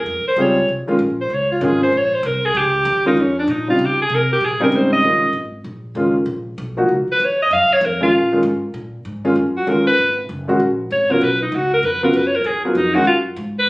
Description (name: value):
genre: jazz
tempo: 194 BPM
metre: 4/4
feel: swing 62% on 8ths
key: Bb dorian, Eb minor from 5.0 s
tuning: A4 = 440 Hz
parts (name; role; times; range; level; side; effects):
- bright alto saxophone; melody; 0.0-13.7 s; Cb4 to F5; -16 LUFS; equal; none
- upright bass; bass; 0.0-13.7 s; Gb1 to Db3; -27 LUFS; equal; none
- warm concert grand piano; accompaniment; 0.4-13.1 s; Db3 to Bb4; -17 LUFS; equal; none
room: wet club reverb, RT60 0.9 s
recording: recorded on a phone in the room, studio reverb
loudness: -15 LUFS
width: side -21 dB against mid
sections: 0.0-5.0 A section; 5.0-13.7 A section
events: alto saxophone solo 0.0-13.7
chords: 0.0 Bbm11; 5.0 Ebm11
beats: | 0.06 0.37 0.69 0.99 | 1.31 1.62 1.93 2.24 | 2.55 2.86 3.17 3.48 | 3.79 4.10 4.41 4.72 | 5.03 5.34 5.65 5.96 | 6.27 6.58 6.89 7.20 | 7.51 7.82 8.12 8.43 | 8.74 9.05 9.36 9.67 | 9.98 10.29 10.60 10.91 | 11.21 11.52 11.83 12.14 | 12.45 12.76 13.06 13.37 | 13.68